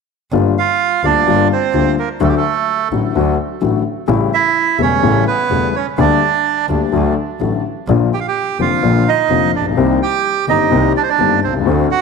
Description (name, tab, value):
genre	tango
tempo	127 BPM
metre	4/4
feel	rubato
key	G minor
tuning	A4 = 442 Hz
part	dark baby grand piano	accompaniment	0.3-11.9 s	E1 to G4	-16 LUFS	left 8 dB	none
part	rich double bass	bass	0.3-11.9 s	E1 to D2	-20 LUFS	right 3 dB	none
part	bandoneon	melody	0.6-12.0 s	A3 to G5	-16 LUFS	right 10 dB	tape echo
room	moderate echo chamber reverb, RT60 1.6 s, small room ambience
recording	1960s-style stereo with parts hard left and right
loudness	-13 LUFS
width	side -5 dB against mid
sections	0.3-12.0 A section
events	none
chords	0.3 Gm7; 2.2 D; 4.1 A7; 6.0 Gm/D; 6.9 D; 7.9 Bb; 9.8 Cm7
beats	| 0.33 0.80 1.27 1.74 | 2.21 2.68 3.15 3.62 | 4.08 4.56 5.03 5.50 | 5.98 6.45 6.92 7.40 | 7.88 8.36 8.83 9.30 | 9.77 10.24 10.71 11.19 | 11.65